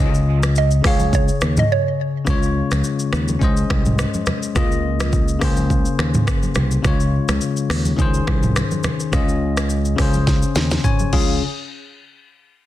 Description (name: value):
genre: afrobeats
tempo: 105 BPM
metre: 4/4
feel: swing 55% on 16ths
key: Db major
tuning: A4 = 441 Hz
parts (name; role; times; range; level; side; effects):
- mallet-like synth pluck; melody; 0.0-2.1 s; Db5 to F5; -23 LUFS; right 6 dB; chorus, phaser, ping-pong delay
- bell-like tine electric piano; accompaniment; 0.0-11.4 s; Db3 to Ab5; -22 LUFS; left 5 dB; none
- fingered electric bass; bass; 0.0-11.4 s; C2 to Eb2; -20 LUFS; right 1 dB; none
- afro-pop drum kit; drums; 0.1-11.3 s; crash cymbal, finger snaps, hi-hat, kick drum, rim click, shaker, snare drum, toms; -20 LUFS; right 1 dB; soft clipping on snare
- congas; percussion; 0.4-11.4 s; none; -28 LUFS; right 2 dB; none
room: digital ambience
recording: dense, heavily limited modern master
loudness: -16 LUFS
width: side -13 dB against mid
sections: 0.0-2.3 A section; 2.3-11.4 B section; 11.4-12.7 C section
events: break 1.7-2.3; drum fill 10.3-11.4; tine electric piano fill 10.6-11.4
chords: 0.0 Ebsus2/Db; 0.8 Dbsus2; 2.3 Db; 3.4 Ab; 4.6 Ebsus2/Db; 5.4 Bbm7/Db; 6.8 Db; 8.0 Ab; 9.1 Ebsus2/Db; 10.0 Abadd11/Db; 11.1 Db; 11.4 N.C.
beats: 0.56 1.13 1.70 | 2.27 2.84 3.42 3.99 | 4.56 5.13 5.70 6.27 | 6.84 7.42 7.99 8.56 | 9.13 9.70 10.27 10.84 | 11.41